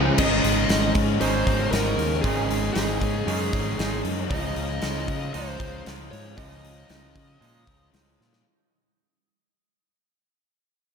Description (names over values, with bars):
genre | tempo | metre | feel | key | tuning
rock, shoegaze and dream pop | 116 BPM | 4/4 | straight | unclear | A4 = 440 Hz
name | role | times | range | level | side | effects
biting overdriven guitar | riff | 0.0-8.4 s | Ab2 to Ab4 | -29 LUFS | left 10 dB | wide subtle chorus
twangy electric guitar | riff | 0.0-8.4 s | Ab2 to Eb4 | -28 LUFS | right 9 dB | reverse reverb
growling fingered electric bass | bass | 0.0-8.4 s | Ab1 to Db3 | -29 LUFS | equal | overdrive
fuzz lead guitar | melody | 0.2-7.9 s | Ab4 to Eb5 | -31 LUFS | equal | distortion, analog delay
big rock drum kit | drums | 0.2-8.4 s | crash cymbal, hi-hat, kick drum, snare drum | -28 LUFS | left 1 dB | none
room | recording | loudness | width
moderate plate reverb, RT60 1.7 s, small room reverb | dreamy mix soaked in reverb | -21 LUFS | side -6 dB against mid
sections
0.2-8.4 A section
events
fade-out 0.2-8.4; drum fill 8.2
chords
0.2 Absus4; 4.3 Dbadd9